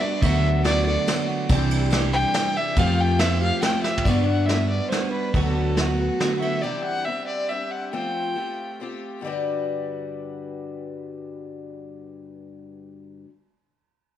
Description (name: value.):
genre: folk rock and heartland rock.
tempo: 139 BPM.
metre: 3/4.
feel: straight.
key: G major.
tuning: A4 = 442 Hz.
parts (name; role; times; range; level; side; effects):
dark fiddle; melody; 0.0-8.8 s; F#4 to G5; -26 LUFS; left 1 dB; plate reverb, tape echo.
picked twelve-string acoustic guitar; accompaniment; 0.0-13.3 s; G2 to B4; -29 LUFS; left 4 dB; none.
clean electric guitar; riff; 0.0-6.6 s; C3 to G4; -27 LUFS; right 8 dB; none.
tambourine; percussion; 0.0-3.7 s; none; -46 LUFS; left 8 dB; none.
hollow-body short-scale fingered electric bass; bass; 0.2-6.1 s; C2 to G2; -23 LUFS; equal; none.
soft brush drum kit; drums; 0.2-6.5 s; crash cymbal, kick drum, ride cymbal, snare drum, toms; -26 LUFS; equal; none.
room: moderate large studio reverb, RT60 1.0 s.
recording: worn, warbling old tape, cassette tape, warbly pitch drift.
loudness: -20 LUFS.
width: side -11 dB against mid.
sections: 0.0-4.0 A section; 4.0-9.2 B section; 9.2-11.8 C section.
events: drum fill 3.8.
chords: 0.2 D6; 1.5 Cadd9; 2.8 Fadd9; 4.0 Gmaj7; 5.3 D6; 6.6 Cadd9; 7.9 Fadd9; 9.2 Gmaj7.